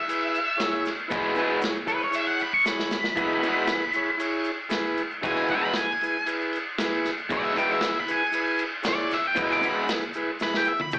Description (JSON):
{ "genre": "garage rock duo or trio", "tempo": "116 BPM", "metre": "4/4", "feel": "straight", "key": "E major", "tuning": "A4 = 441 Hz", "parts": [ { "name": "octave-fuzz lead guitar", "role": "melody", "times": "0.0-11.0 s", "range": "B4 to D6", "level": "-25 LUFS", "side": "equal", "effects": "distortion, slapback echo, tape echo" }, { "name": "combo organ", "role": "sustained chords", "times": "0.1-11.0 s", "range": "E4 to C#5", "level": "-29 LUFS", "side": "equal", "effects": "none" }, { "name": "crunchy breakbeat drum kit", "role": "drums", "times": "0.1-11.0 s", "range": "crash cymbal, kick drum, snare drum, toms", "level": "-29 LUFS", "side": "equal", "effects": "none" }, { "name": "tube shaker", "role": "percussion", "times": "0.1-11.0 s", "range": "none", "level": "-50 LUFS", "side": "left 1 dB", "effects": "none" }, { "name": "raw garage guitar", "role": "riff", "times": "1.1-9.8 s", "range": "E2 to E4", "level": "-25 LUFS", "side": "equal", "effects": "overdrive, slapback echo" } ], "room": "light reverb", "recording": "live gig heard through the venue's PA, club reverb, AM radio sound", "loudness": "-22 LUFS", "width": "side -20 dB against mid", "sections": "0.0-11.0 A section", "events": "lead electric guitar solo 0.0-11.0; drum fill 2.7-3.2, 10.4-11.0", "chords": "0.0 E", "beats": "0.08 0.59 | 1.11 1.62 2.14 2.66 | 3.17 3.69 4.20 4.72 | 5.24 5.75 6.27 6.79 | 7.30 7.82 8.34 8.85 | 9.37 9.88 10.40 10.92" }